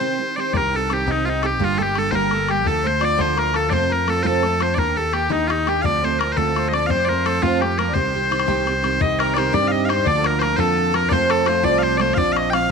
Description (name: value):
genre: celtic folk, Celtic jig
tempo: 114 BPM (dotted quarters)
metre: 6/8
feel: straight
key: C dorian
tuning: A4 = 443 Hz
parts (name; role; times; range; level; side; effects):
- loud bright bagpipes; melody; 0.0-12.7 s; Eb4 to G5; -22 LUFS; equal; none
- accordion; second line; 0.0-12.7 s; Eb4 to F5; -24 LUFS; left 11 dB; none
- picked steel-string acoustic guitar; accompaniment; 0.0-12.7 s; F2 to G4; -23 LUFS; right 11 dB; none
- picked electric bass; bass; 0.5-12.7 s; G1 to G2; -25 LUFS; equal; none
- bodhran; percussion; 0.5-12.6 s; none; -27 LUFS; left 6 dB; none
room: moderate echo chamber reverb, RT60 1.8 s, small room ambience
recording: 1960s-style stereo with parts hard left and right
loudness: -17 LUFS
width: side -5 dB against mid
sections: 0.5-9.0 A section; 9.0-12.7 B section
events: none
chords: 0.0 Cm; 1.6 Gm; 2.7 Dm; 3.7 F; 4.8 Ebmaj7; 5.8 Dm7; 6.9 F; 8.0 Cm; 10.1 Bb/D; 11.1 F; 12.2 Bbadd9